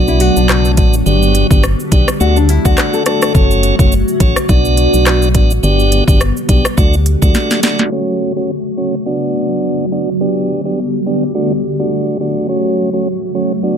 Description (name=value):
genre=dancehall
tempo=105 BPM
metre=4/4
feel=swing 56% on 16ths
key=unclear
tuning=A4 = 440 Hz
part: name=tonewheel organ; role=accompaniment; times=0.0-13.8 s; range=A3 to D5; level=-17 LUFS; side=right 2 dB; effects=overdrive, stopped rotary speaker
part: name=granular cloud pad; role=sustained chords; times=0.0-13.8 s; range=C#3 to G4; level=-18 LUFS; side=equal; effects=built-in reverb, sidechain pumping
part: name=organ-like FM bass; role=bass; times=0.0-7.3 s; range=F#1 to D2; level=-13 LUFS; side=equal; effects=none
part: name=nylon-string guitar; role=arpeggios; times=0.1-3.3 s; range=D4 to A4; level=-19 LUFS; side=left 10 dB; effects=none
part: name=island pop drum kit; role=drums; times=0.1-7.9 s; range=handclaps, hi-hat, kick drum, rim click, shaker, snare drum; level=-13 LUFS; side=equal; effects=overdrive
room=light reverb, digital ambience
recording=low-pass filter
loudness=-11 LUFS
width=side -8 dB against mid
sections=0.0-7.9 A section; 7.9-13.8 B section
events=drum fill 7.3-7.9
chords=0.0 Bm; 1.1 G; 2.2 D; 3.3 F#m; 4.5 Bm; 5.6 G; 6.8 D; 7.9 F#m; 9.1 Bm; 10.2 G; 11.3 D; 12.5 F#m